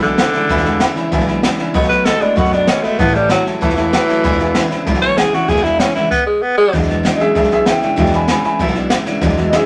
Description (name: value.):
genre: rockabilly.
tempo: 192 BPM.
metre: 4/4.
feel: straight.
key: E mixolydian.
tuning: A4 = 441 Hz.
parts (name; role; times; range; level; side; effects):
raspy tenor saxophone; melody; 0.0-6.7 s; D3 to C#5; -17 LUFS; equal; none.
picked steel-string acoustic guitar; accompaniment; 0.0-9.7 s; E2 to F#4; -24 LUFS; equal; none.
warm upright piano; accompaniment; 0.0-9.7 s; F#3 to B5; -22 LUFS; equal; none.
electric guitar through a small old amp; riff; 0.0-9.7 s; E2 to G#3; -24 LUFS; equal; none.
upright bass; bass; 0.0-9.5 s; E1 to F#2; -24 LUFS; equal; none.
jazz brush drum kit; drums; 0.0-9.6 s; crash cymbal, hi-hat, kick drum, snare drum; -21 LUFS; equal; none.
room: moderate studio reverb, RT60 0.6 s.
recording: none.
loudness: -15 LUFS.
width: mono.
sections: 0.0-6.7 A section; 6.7-9.7 B section.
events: upright piano fill 1.1-1.7; upright piano solo 6.7-9.7.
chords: 0.0 E7; 1.7 B7; 3.0 A7; 4.2 E7; 6.1 N.C.; 6.7 E7.